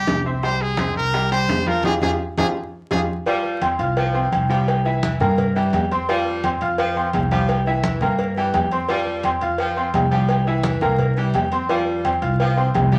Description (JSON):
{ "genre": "latin, salsa", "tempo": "171 BPM", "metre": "4/4", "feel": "straight", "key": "F harmonic minor", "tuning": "A4 = 436 Hz", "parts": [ { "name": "brilliant trumpet", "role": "melody", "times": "0.0-3.0 s", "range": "G4 to C5", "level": "-26 LUFS", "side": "equal", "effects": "none" }, { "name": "bright concert grand piano", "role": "accompaniment", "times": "0.0-13.0 s", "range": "E3 to F6", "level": "-26 LUFS", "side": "equal", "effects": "none" }, { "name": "upright bass", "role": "bass", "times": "0.0-13.0 s", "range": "C2 to G2", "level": "-26 LUFS", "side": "equal", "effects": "none" }, { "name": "bongos and cowbell", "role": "percussion", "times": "0.1-13.0 s", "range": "none", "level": "-32 LUFS", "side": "equal", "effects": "none" }, { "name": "congas", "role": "percussion", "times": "0.1-13.0 s", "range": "none", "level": "-30 LUFS", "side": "equal", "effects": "none" }, { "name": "timbales and agogo bells", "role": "percussion", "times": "0.1-12.9 s", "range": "none", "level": "-27 LUFS", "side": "equal", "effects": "none" }, { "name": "clear saxophone section", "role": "second line", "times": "3.3-13.0 s", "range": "E3 to G3", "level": "-30 LUFS", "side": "equal", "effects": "none" } ], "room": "wet club reverb, RT60 0.6 s", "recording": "vinyl crackle", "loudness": "-20 LUFS", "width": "mono", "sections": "0.0-3.3 A section; 3.3-13.0 B section", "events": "drum fill 1.8-3.3; band accent 1.8-3.3", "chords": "0.4 C; 1.8 Fmadd9; 3.3 Fsus2; 4.7 C7; 6.1 Fsus2; 7.5 C7; 8.9 Fsus2; 10.3 C7; 11.7 Fsus2", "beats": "0.07 | 0.43 0.79 1.14 1.49 | 1.85 2.20 2.56 2.91 | 3.27 3.62 3.97 4.33 | 4.68 5.03 5.38 5.73 | 6.09 6.44 6.79 7.14 | 7.49 7.84 8.19 8.54 | 8.89 9.24 9.60 9.95 | 10.30 10.65 11.00 11.35 | 11.70 12.05 12.40 12.75" }